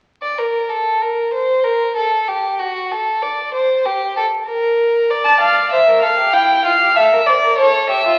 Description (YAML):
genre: classical, baroque-style fugue for string quartet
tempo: 96 BPM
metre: 4/4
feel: straight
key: unclear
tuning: A4 = 439 Hz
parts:
  - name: rich violin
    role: second line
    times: 0.2-8.2 s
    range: E4 to D5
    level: -19 LUFS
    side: equal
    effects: none
  - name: rich violin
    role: melody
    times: 5.2-8.2 s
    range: C#5 to A5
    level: -14 LUFS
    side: equal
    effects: none
room: wet recital hall reverb, RT60 1.6 s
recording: very old 78 rpm record, vinyl crackle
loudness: -16 LUFS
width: mono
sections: 0.1-8.2 A section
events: none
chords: 0.1 N.C.; 5.1 Dm; 6.3 Em7; 7.6 A7